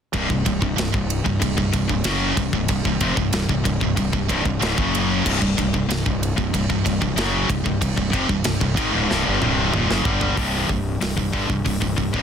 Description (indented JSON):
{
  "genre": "heavy metal",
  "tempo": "94 BPM",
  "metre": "4/4",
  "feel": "straight",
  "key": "unclear",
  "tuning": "A4 = 440 Hz",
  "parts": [
    { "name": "high-gain distorted guitar", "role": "riff", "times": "0.1-12.2 s", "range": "C2 to G3", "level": "-23 LUFS", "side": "left 7 dB", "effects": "distortion" },
    { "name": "scooped high-gain guitar", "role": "riff", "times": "0.1-12.2 s", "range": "C2 to G3", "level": "-25 LUFS", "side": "right 14 dB", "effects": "distortion" },
    { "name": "fuzz fingered electric bass", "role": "bass", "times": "0.1-12.2 s", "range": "C1 to Ab1", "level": "-26 LUFS", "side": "right 1 dB", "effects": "overdrive" },
    { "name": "tight metal drum kit", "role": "drums", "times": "0.1-12.2 s", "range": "crash cymbal, hi-hat, kick drum, ride cymbal, snare drum, toms", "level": "-25 LUFS", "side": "right 1 dB", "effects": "soft clipping on snare" }
  ],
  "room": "light reverb",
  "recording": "dense, heavily limited modern master",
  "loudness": "-18 LUFS",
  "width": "side -8 dB against mid",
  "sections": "0.1-10.4 A section; 10.4-12.2 B section",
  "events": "drum fill 9.1-10.4",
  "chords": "0.1 C5"
}